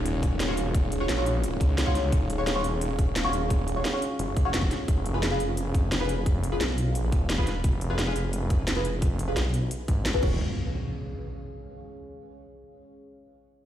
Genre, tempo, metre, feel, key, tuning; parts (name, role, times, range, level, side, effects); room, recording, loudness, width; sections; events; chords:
dark technical drum and bass; 174 BPM; 4/4; straight; Eb minor; A4 = 440 Hz
dark analog pad; sustained chords; 0.0-10.4 s; Eb4 to F5; -39 LUFS; right 1 dB
snarling distorted saw bass; bass; 0.0-10.4 s; Eb1 to Db2; -28 LUFS; equal; distortion, sidechain pumping
impact; sound effects; 0.0-0.7, 10.2-11.6 s; -34 LUFS; equal
deep dark ambient pad; texture; 0.0-11.7 s; Db4 to F5; -37 LUFS; equal; chorus, built-in reverb, sidechain pumping
drum and bass drum kit; drums; 0.1-10.3 s; crash cymbal, hi-hat, snare drum; -32 LUFS; equal
electronic kick drum; drums; 0.2-10.3 s; -24 LUFS; equal
band-passed chord stab; stabs; 0.5-10.4 s; F4 to Db5; -32 LUFS; left 1 dB; phaser, wide subtle chorus, ping-pong delay
little or no reverb; played on a big sound system in a bare room, stone room reverb; -24 LUFS; side -11 dB against mid
0.0-10.4 A section; 10.4-11.8 B section
fade-out on ambient pad 0.0-10.4; impact 0.0-0.7; filter sweep on detuned saw bass 0.0-10.4
0.0 Ebm7; 4.9 Fdim; 10.2 Ebm7; 10.4 Db/Ab